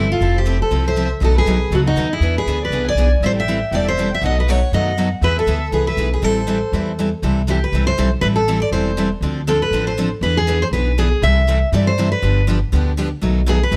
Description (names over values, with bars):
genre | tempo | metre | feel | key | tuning
acoustic string swing (jazz manouche) | 240 BPM | 4/4 | swing 56% on 8ths | A minor | A4 = 440 Hz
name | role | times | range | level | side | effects
picked steel-string acoustic guitar | melody | 0.0-13.8 s | D#4 to E5 | -22 LUFS | equal | slapback echo
warm violin | second line | 0.0-7.0 s | F#4 to G#5 | -32 LUFS | equal | none
picked steel-string acoustic guitar | accompaniment | 0.0-13.8 s | B2 to A4 | -26 LUFS | equal | none
picked steel-string acoustic guitar | accompaniment | 0.0-13.8 s | B2 to B4 | -30 LUFS | equal | none
upright bass | bass | 0.0-13.8 s | E1 to G2 | -21 LUFS | equal | none
room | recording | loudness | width
little or no reverb | close, detailed microphones | -18 LUFS | mono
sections
0.0-7.2 A section; 7.2-13.8 B section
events
none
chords
0.2 Fmaj7; 1.2 B7; 2.2 E7; 3.2 Am7; 4.2 B7; 5.2 E; 6.2 Am7; 7.2 C6; 8.2 Am7; 9.2 Dm7; 10.2 E7; 11.2 C6; 12.2 G7; 13.2 B7